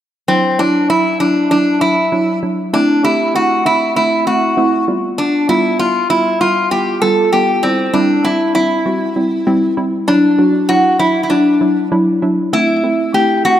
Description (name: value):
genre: pop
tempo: 98 BPM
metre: 4/4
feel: straight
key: D mixolydian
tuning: A4 = 440 Hz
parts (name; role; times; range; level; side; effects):
- metal-body resonator slide guitar; melody; 0.3-13.6 s; C4 to A4; -13 LUFS; left 1 dB; tape echo
- soft round pluck; accompaniment; 0.3-13.6 s; F#3 to G4; -16 LUFS; right 1 dB; chorus
room: moderate lush hall reverb, RT60 2.4 s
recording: none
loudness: -12 LUFS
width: side -11 dB against mid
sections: 0.3-10.1 A section; 10.1-13.6 B section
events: none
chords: 0.3 Dadd9; 2.7 Am; 4.9 G7; 7.6 C; 10.1 Dadd9; 12.5 Am